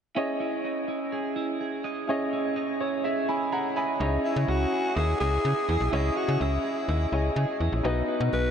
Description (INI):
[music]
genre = pop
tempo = 125 BPM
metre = 4/4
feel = straight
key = C# minor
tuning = A4 = 439 Hz
[part]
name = clear concert grand piano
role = accompaniment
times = 0.2-8.5 s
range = D#4 to B5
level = -30 LUFS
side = left 1 dB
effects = none
[part]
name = electric guitar at the edge of break-up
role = riff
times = 0.2-8.5 s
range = B3 to D#5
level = -31 LUFS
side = right 4 dB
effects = lush chorus, diffuse ambient delay
[part]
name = slap-like FM bass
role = bass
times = 4.0-8.5 s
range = A#1 to C#3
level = -26 LUFS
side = equal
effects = none
[part]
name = breathy alto saxophone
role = melody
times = 4.2-8.5 s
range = E4 to B4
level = -29 LUFS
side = left 2 dB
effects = diffuse ambient delay
[sound]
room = wet huge ambient reverb, RT60 7.0 s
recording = dreamy mix soaked in reverb, nothing above 10.6 kHz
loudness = -25 LUFS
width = side -8 dB against mid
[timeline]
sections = 0.2-4.0 A section; 4.0-8.5 B section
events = grand piano fill 2.6-4.0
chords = 0.2 C#madd9; 7.8 B